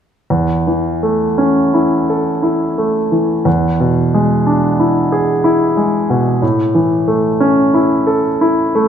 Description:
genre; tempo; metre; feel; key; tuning
classical; 56-62 BPM; 3/4; rubato; A major; A4 = 439 Hz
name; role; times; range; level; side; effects
bright concert grand piano; accompaniment; 0.3-8.9 s; E2 to A4; -12 LUFS; equal; none
room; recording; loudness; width
moderate scoring stage reverb, RT60 1.9 s; close, detailed microphones; -12 LUFS; side -8 dB against mid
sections
0.3-8.9 A section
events
none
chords
0.3 A/E; 3.5 E7; 6.4 A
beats
| 0.30 1.37 2.43 | 3.46 4.46 5.44 | 6.42 7.40 8.42

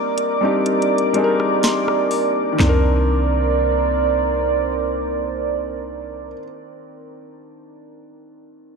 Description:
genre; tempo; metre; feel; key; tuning
contemporary R&B; 62 BPM; 4/4; straight; C minor; A4 = 440 Hz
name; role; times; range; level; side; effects
felt-muted upright piano; accompaniment; 0.0-8.8 s; Eb3 to C6; -23 LUFS; left 2 dB; none
deep dark ambient pad; sustained chords; 0.0-6.3 s; Bb4 to D6; -20 LUFS; right 3 dB; chorus, built-in reverb
smooth R&B drum kit; drums; 0.2-2.8 s; handclaps, hi-hat, rim click, snare drum, toms; -23 LUFS; right 1 dB; none
clean 808-style bass; bass; 2.6-6.3 s; C2; -22 LUFS; equal; none
glassy wavetable pluck; texture; 2.6-6.3 s; Eb4; -31 LUFS; left 3 dB; none
room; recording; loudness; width
digital ambience; dry, gritty hardware recording; -16 LUFS; side -5 dB against mid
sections
0.0-2.6 A section; 2.6-6.5 B section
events
break 0.0-2.6; felt piano fill 1.1-2.6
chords
0.0 Cm9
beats
0.66 1.63 | 2.60 3.56 4.53 5.50

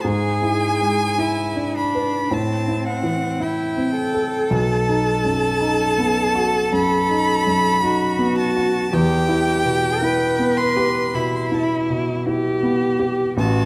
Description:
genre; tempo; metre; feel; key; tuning
classical, slow romantic movement for piano trio; 54 BPM; 4/4; rubato; E minor; A4 = 436 Hz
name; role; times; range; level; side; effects
rich violin; melody; 0.0-13.7 s; F#5 to C6; -26 LUFS; equal; none
rich cello; second line; 0.0-13.7 s; C4 to B4; -25 LUFS; equal; none
warm grand piano; accompaniment; 0.0-13.7 s; A1 to B4; -23 LUFS; equal; none
room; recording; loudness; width
moderate recital hall reverb, RT60 1.5 s; close, detailed microphones; -20 LUFS; mono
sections
0.0-13.7 A section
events
none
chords
0.1 E7/G#; 2.3 Am7; 4.5 B7; 8.9 Em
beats
| 0.07 1.21 2.32 3.42 | 4.53 5.63 6.73 7.84 | 8.93 10.02 11.14 12.26 | 13.37

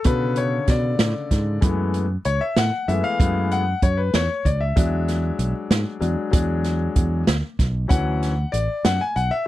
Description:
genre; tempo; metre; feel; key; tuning
progressive instrumental, band music in an uneven meter; 191 BPM (eighths); 5/8; straight; E mixolydian; A4 = 442 Hz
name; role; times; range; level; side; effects
bright concert grand piano; accompaniment; 0.0-9.5 s; C#3 to G#5; -24 LUFS; left 4 dB; none
fretless electric bass; bass; 0.0-9.3 s; A1 to B2; -22 LUFS; right 1 dB; none
open jazz drum kit; drums; 0.0-9.3 s; hi-hat, kick drum, snare drum; -20 LUFS; right 1 dB; none
room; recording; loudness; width
little or no reverb; dry, close 1970s-style studio recording; -19 LUFS; side -15 dB against mid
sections
0.0-9.5 A section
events
grand piano solo 0.0-9.5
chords
0.0 Bm7; 1.6 F#m11; 4.8 E7; 7.9 Dmaj7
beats
| 0.05 0.36 0.68 0.99 1.30 | 1.62 1.93 2.25 2.56 2.88 | 3.19 3.51 3.82 4.13 4.45 | 4.76 5.08 5.39 5.71 6.02 | 6.33 6.65 6.96 7.28 7.59 | 7.91 8.22 8.53 8.85 9.16

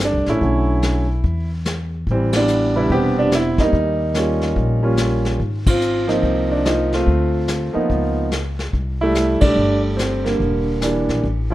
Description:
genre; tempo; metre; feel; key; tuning
jazz piano trio; 144 BPM; 4/4; swing 64% on 8ths; unclear; A4 = 440 Hz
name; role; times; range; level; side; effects
clear concert grand piano; melody; 0.0-11.5 s; C3 to B4; -18 LUFS; right 1 dB; none
upright bass; bass; 0.0-11.5 s; E1 to E2; -21 LUFS; left 1 dB; none
vintage brush drum kit; drums; 0.0-11.5 s; brushed snare drum, hi-hat, kick drum, ride cymbal, snare drum; -24 LUFS; left 1 dB; none
room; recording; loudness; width
light reverb, small room ambience; rough home demo mix; -16 LUFS; side -15 dB against mid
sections
0.0-11.5 A section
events
band accent 2.3, 5.6, 9.4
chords
0.4 Bm9; 1.2 N.C.; 2.1 Am11; 3.7 Eb9; 5.4 Ab6; 7.1 Dm7; 7.9 Db13; 8.7 C69; 10.4 Em7b5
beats
0.00 | 0.41 0.83 1.24 1.66 | 2.07 2.49 2.90 3.32 | 3.74 4.15 4.57 4.99 | 5.40 5.82 6.23 6.65 | 7.07 7.48 7.90 8.32 | 8.73 9.15 9.57 9.98 | 10.40 10.82 11.23

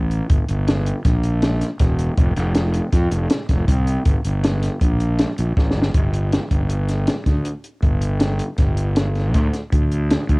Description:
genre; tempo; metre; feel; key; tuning
math rock and midwest emo; 159 BPM; 5/4; straight; G minor; A4 = 440 Hz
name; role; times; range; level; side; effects
fuzz fingered electric bass; bass; 0.0-10.4 s; E1 to F2; -19 LUFS; equal; overdrive
compact cocktail drum kit; drums; 0.1-10.4 s; hi-hat, kick drum, snare drum; -19 LUFS; equal; cassette tape
room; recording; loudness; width
little or no reverb; home recording on cassette; -17 LUFS; side -30 dB against mid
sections
0.0-5.9 A section; 5.9-10.4 B section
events
drum fill 5.6-5.9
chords
none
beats
| 0.29 0.67 1.05 1.43 1.80 | 2.18 2.56 2.93 3.31 3.68 | 4.06 4.44 4.81 5.19 5.57 | 5.95 6.32 6.70 7.08 7.46 | 7.83 8.21 8.59 8.97 9.35 | 9.72 10.10

